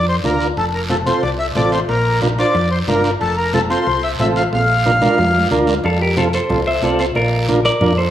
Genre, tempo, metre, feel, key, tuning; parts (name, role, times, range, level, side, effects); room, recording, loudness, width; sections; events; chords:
latin, cumbia; 182 BPM; 4/4; straight; F major; A4 = 440 Hz
accordion; second line; 0.0-5.5 s; A4 to F5; -18 LUFS; left 1 dB
hollow-body short-scale fingered electric bass; bass; 0.0-8.1 s; F1 to F2; -20 LUFS; equal
combo organ; accompaniment; 0.2-7.9 s; C4 to C5; -19 LUFS; right 2 dB
congas; percussion; 0.2-8.0 s; -26 LUFS; left 2 dB
guiro; percussion; 0.2-8.1 s; -30 LUFS; right 2 dB
timbales and cowbell; percussion; 0.6-8.0 s; -28 LUFS; right 3 dB
clean electric guitar; melody; 5.8-8.1 s; F4 to E5; -18 LUFS; equal; spring reverb, slapback echo
moderate plate reverb, RT60 2.9 s; rough home demo mix, small room reverb; -14 LUFS; side -11 dB against mid
0.0-5.8 A section; 5.8-8.1 B section
accordion solo 0.0-5.8; drum fill 4.5-5.8
0.0 Bb; 0.6 F; 1.9 Bb; 3.2 F; 4.5 Bb; 5.8 F; 7.2 Bb